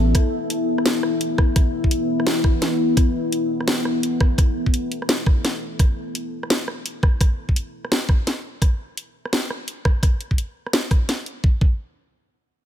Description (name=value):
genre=half-time drum and bass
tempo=170 BPM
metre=4/4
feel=swing 60% on 16ths, half-time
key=unclear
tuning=A4 = 440 Hz
part: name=deep dark ambient pad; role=sustained chords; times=0.0-5.8 s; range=B3 to E5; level=-23 LUFS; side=left 2 dB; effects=chorus, built-in reverb, sidechain pumping
part: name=drum and bass drum kit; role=drums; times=0.1-11.3 s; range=hi-hat, rim click, snare drum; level=-23 LUFS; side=equal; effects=none
part: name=electronic kick drum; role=drums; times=0.1-11.7 s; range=none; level=-17 LUFS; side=equal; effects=none
room=light reverb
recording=none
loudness=-19 LUFS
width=side -10 dB against mid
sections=0.0-11.4 A section; 11.4-12.7 B section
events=none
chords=0.1 Asus2; 5.8 N.C.